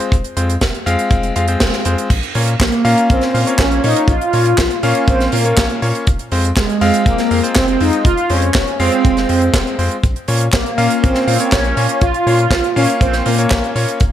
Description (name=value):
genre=italo disco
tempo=121 BPM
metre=4/4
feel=straight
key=unclear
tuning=A4 = 439 Hz
part: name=bright electric grand piano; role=stabs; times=0.0-14.0 s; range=Ab3 to F5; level=-19 LUFS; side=left 2 dB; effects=none
part: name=tight funk drum kit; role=drums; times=0.0-14.1 s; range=crash cymbal, handclaps, hi-hat, snare drum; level=-20 LUFS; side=right 2 dB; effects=gated reverb
part: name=round analog bass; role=bass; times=0.1-14.1 s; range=F1 to Bb2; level=-19 LUFS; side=equal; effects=none
part: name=kick drum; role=drums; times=0.1-14.1 s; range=none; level=-14 LUFS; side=equal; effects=none
part: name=mellow synth brass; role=melody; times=2.6-13.7 s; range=Ab3 to F4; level=-17 LUFS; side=right 1 dB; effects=chorus, tape echo
room=light reverb, studio reverb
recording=none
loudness=-12 LUFS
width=side -11 dB against mid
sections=0.0-2.1 A section; 2.1-14.1 B section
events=band accent 1.6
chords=0.0 Fm; 2.1 Bbm; 6.1 Fm; 10.0 Bbm